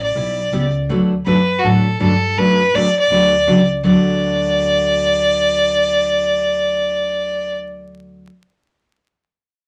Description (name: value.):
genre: country, western swing.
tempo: 163 BPM.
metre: 4/4.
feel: swing 65% on 8ths.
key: D major.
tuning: A4 = 440 Hz.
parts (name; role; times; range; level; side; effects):
clear fiddle; melody; 0.0-7.6 s; F#4 to D5; -18 LUFS; equal; none.
upright bass; bass; 0.0-8.2 s; A1 to A2; -26 LUFS; equal; none.
picked steel-string acoustic guitar; accompaniment; 0.2-8.3 s; D3 to B4; -21 LUFS; equal; none.
room: wet studio ambience, RT60 0.5 s.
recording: vinyl crackle.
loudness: -16 LUFS.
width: mono.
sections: 0.0-3.8 A section; 3.8-6.8 B section.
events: none.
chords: 0.0 G6; 0.9 D6.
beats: 0.16 0.53 | 0.90 1.27 1.63 2.00 | 2.37 2.74 3.11 3.48 | 3.84 4.21 4.58 4.95 | 5.32 5.68 6.05 6.42.